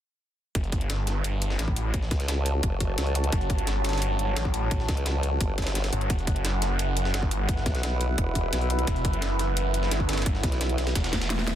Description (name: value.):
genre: dark technical drum and bass.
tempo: 173 BPM.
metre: 4/4.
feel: straight.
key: F# phrygian.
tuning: A4 = 440 Hz.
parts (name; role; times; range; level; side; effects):
deep dark ambient pad; texture; 2.9-11.6 s; E4 to C#5; -42 LUFS; right 1 dB; none.
deep dark ambient pad; sustained chords; 1.4-11.6 s; E4 to A5; -32 LUFS; right 1 dB; chorus, built-in reverb, sidechain pumping.
snarling distorted saw bass; bass; 0.6-11.6 s; E1 to A1; -27 LUFS; equal; distortion, overdrive, sidechain pumping.
breakbeat sampler-style drum kit; drums; 0.6-11.6 s; hi-hat, snare drum; -35 LUFS; right 1 dB; high-pass filter on hats, high-pass filter on snare.
drum and bass drum kit; drums; 0.6-11.5 s; hi-hat, snare drum; -32 LUFS; left 1 dB; overdrive.
electronic kick drum; drums; 0.6-11.2 s; none; -27 LUFS; equal; overdrive.
formant-sweep wobble bass; bass; 2.1-10.9 s; E1 to C#2; -26 LUFS; equal; chorus.
room: digital ambience.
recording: dense, heavily limited modern master.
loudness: -24 LUFS.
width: side -11 dB against mid.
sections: 0.6-11.6 A section.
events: drum fill 11.1-11.6.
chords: 0.6 F#m; 6.1 Em.